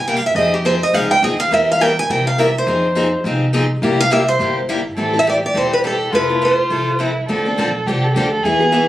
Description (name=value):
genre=acoustic string swing (jazz manouche)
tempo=208 BPM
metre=4/4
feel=swing 58% on 8ths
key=F minor, A minor from 5.0 s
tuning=A4 = 436 Hz
part: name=picked steel-string acoustic guitar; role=melody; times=0.0-7.1 s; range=G4 to Ab5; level=-16 LUFS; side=right 1 dB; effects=none
part: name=upright bass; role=bass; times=0.0-8.9 s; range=E1 to C3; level=-23 LUFS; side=equal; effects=none
part: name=picked steel-string acoustic guitar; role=accompaniment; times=0.1-8.8 s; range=C3 to Bb4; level=-19 LUFS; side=left 2 dB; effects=none
part: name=dark violin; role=second line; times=5.0-8.9 s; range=E4 to A4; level=-19 LUFS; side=right 2 dB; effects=none
room=moderate small room reverb, RT60 0.5 s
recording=recorded on a phone in the room, club reverb, compression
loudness=-14 LUFS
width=side -14 dB against mid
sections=0.0-5.0 A section; 5.0-8.9 B section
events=steel-string acoustic guitar solo 0.0-5.0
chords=0.4 Fm7; 1.5 C7/E; 2.7 Fm7; 3.8 C7; 5.0 Am7; 6.1 Fmaj7; 7.3 Dm7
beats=0.08 | 0.37 0.65 0.94 1.23 | 1.52 1.81 2.09 2.38 | 2.67 2.96 3.25 3.54 | 3.82 4.11 4.40 4.69 | 4.98 5.26 5.55 5.84 | 6.13 6.42 6.71 7.00 | 7.29 7.58 7.87 8.15 | 8.44 8.73